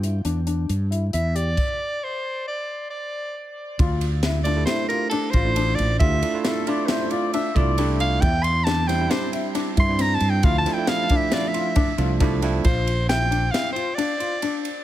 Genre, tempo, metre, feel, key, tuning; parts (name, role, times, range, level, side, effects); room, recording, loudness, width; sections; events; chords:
progressive instrumental, band music in an uneven meter; 135 BPM; 5/4; straight; D minor; A4 = 440 Hz
dark grand piano; arpeggios; 0.0-14.7 s; C4 to G4; -28 LUFS; left 6 dB
mellow fretless electric bass; bass; 0.0-13.5 s; A1 to G2; -22 LUFS; equal
crisp fusion drum kit; drums; 0.0-14.8 s; crash cymbal, hi-hat, kick drum, ride cymbal, snare drum; -25 LUFS; equal
bright soprano saxophone; melody; 1.1-14.6 s; A4 to C6; -26 LUFS; equal; tape echo
barky tine electric piano; accompaniment; 4.4-12.7 s; F3 to G5; -27 LUFS; right 6 dB
warm flugelhorn; second line; 6.5-7.9 s; A4 to E5; -30 LUFS; left 3 dB; tape echo
light reverb, small room ambience; -20 LUFS; side -13 dB against mid
0.0-3.8 A section; 3.8-12.7 B section; 12.7-14.8 C section
stop 1.6-3.8; soprano saxophone solo 3.8-12.7; tine electric piano fill 12.0-12.7
0.0 Em7; 1.6 N.C.; 3.8 Dmadd9; 8.2 Cadd9/E; 10.4 Dmadd9; 12.7 Bbadd9